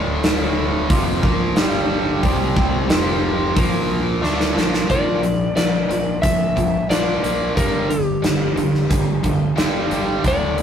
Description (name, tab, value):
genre	hard rock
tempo	90 BPM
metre	4/4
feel	straight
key	unclear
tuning	A4 = 440 Hz
part	tight distorted guitar	riff	0.0-10.6 s	D2 to D4	-21 LUFS	right 1 dB	distortion
part	fuzz fingered electric bass	bass	0.0-10.6 s	D1 to D2	-26 LUFS	equal	overdrive
part	huge arena drum kit	drums	0.2-10.6 s	hi-hat, kick drum, snare drum	-20 LUFS	equal	none
part	lightly driven lead guitar	melody	4.9-10.6 s	G4 to E5	-23 LUFS	left 3 dB	none
room	light reverb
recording	rough rehearsal-room recording, tube saturation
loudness	-16 LUFS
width	side -8 dB against mid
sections	0.0-4.9 A section; 4.9-10.6 B section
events	drum fill 4.2-4.9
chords	0.0 D5; 0.9 F5; 1.6 G5; 2.2 F5; 3.6 Bb5; 4.2 Bbmaj7; 4.9 Bb; 7.6 G5